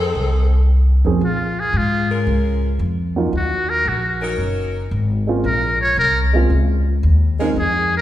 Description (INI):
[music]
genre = jazz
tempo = 113 BPM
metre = 4/4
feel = swing 69% on 8ths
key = Bb minor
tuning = A4 = 440 Hz
[part]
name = bright saxophone section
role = melody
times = 0.0-0.7 s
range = Eb3 to A4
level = -23 LUFS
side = left 2 dB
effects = none
[part]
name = upright bass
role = bass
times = 0.0-8.0 s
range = Gb1 to Bb2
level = -17 LUFS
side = equal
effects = none
[part]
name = dark upright piano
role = accompaniment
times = 1.0-7.6 s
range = F3 to G#4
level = -22 LUFS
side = right 2 dB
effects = none
[part]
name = trumpet with metal mute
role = melody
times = 1.2-8.0 s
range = F4 to Db5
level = -19 LUFS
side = equal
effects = none
[part]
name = warm saxophone section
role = sustained chords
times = 2.1-7.5 s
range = Gb3 to Bb4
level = -26 LUFS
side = left 1 dB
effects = none
[sound]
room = wet scoring stage reverb, RT60 1.9 s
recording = recorded in a church or concert hall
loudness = -15 LUFS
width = side -13 dB against mid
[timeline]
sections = 0.0-1.2 A section; 1.2-8.0 B section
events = muted trumpet solo 1.2-8.0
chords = 0.0 F7#9; 1.2 Bbm7; 3.3 Ebm7; 5.5 Bbm7